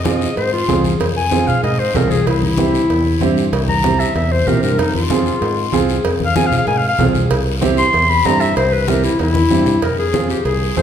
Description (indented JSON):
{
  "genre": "latin, cumbia",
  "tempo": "190 BPM",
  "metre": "4/4",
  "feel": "straight",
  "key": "F harmonic minor",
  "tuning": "A4 = 440 Hz",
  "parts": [
    { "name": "clear clarinet", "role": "melody", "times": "0.0-10.8 s", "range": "Eb4 to C6", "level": "-18 LUFS", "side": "left 2 dB", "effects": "none" },
    { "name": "warm upright piano", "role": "accompaniment", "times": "0.0-10.8 s", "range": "C4 to Ab4", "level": "-20 LUFS", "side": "right 5 dB", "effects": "none" },
    { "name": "fingered electric bass", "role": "bass", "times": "0.0-10.8 s", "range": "C2 to Bb2", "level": "-20 LUFS", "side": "equal", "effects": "none" },
    { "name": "congas", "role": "percussion", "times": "0.1-10.8 s", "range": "none", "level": "-22 LUFS", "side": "left 2 dB", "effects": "none" },
    { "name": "guiro", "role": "percussion", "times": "0.1-10.8 s", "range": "none", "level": "-29 LUFS", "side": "left 6 dB", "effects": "none" },
    { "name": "cowbell and timbales", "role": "percussion", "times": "0.4-10.8 s", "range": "none", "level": "-26 LUFS", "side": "right 4 dB", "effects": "none" }
  ],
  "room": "wet recital hall reverb, RT60 1.5 s",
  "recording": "recorded in a church or concert hall",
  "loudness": "-13 LUFS",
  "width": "side -9 dB against mid",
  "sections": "0.0-9.8 A section",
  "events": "clarinet solo 0.0-9.8; drum fill 9.4-9.8",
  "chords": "0.0 Fm; 2.3 C7; 4.8 Fm; 7.3 C; 9.8 Fm"
}